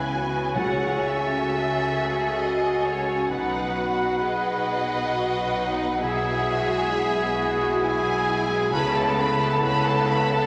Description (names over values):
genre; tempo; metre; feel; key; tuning
cinematic, emotional film score for orchestra; 66 BPM; 3/4; rubato; unclear; A4 = 440 Hz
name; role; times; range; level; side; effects
rich studio violin section; melody; 0.0-10.5 s; C#5 to B5; -33 LUFS; equal; none
dark clarinet; second line; 0.0-10.5 s; D#4 to F#4; -36 LUFS; equal; none
hollow concert flute; second line; 0.0-10.5 s; F#5 to A5; -32 LUFS; equal; none
rich studio violin section; second line; 0.0-10.5 s; G#4 to C#5; -34 LUFS; equal; none
warm oboe; second line; 0.0-10.5 s; G#4 to B4; -33 LUFS; equal; none
rich studio viola section; accompaniment; 0.0-10.5 s; C#4 to G#4; -34 LUFS; equal; none
dark French horn section; sustained chords; 0.0-10.5 s; F#3 to A4; -32 LUFS; equal; none
concert harp; arpeggios; 0.0-10.5 s; B2 to C#5; -36 LUFS; equal; none
rich studio cello section; bass; 0.0-10.4 s; B2 to C#3; -36 LUFS; equal; none
rich studio double bass section; bass; 0.0-10.4 s; B1 to C#2; -35 LUFS; equal; none
timpani; percussion; 0.6-1.9 s; C#3; -37 LUFS; equal; none
room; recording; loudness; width
wet scoring stage reverb, RT60 1.6 s; none; -24 LUFS; mono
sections
0.0-10.5 A section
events
none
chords
0.0 C#m7; 0.6 F#madd9/C#; 3.3 B; 6.0 Eadd9/B; 8.7 Aadd9/C#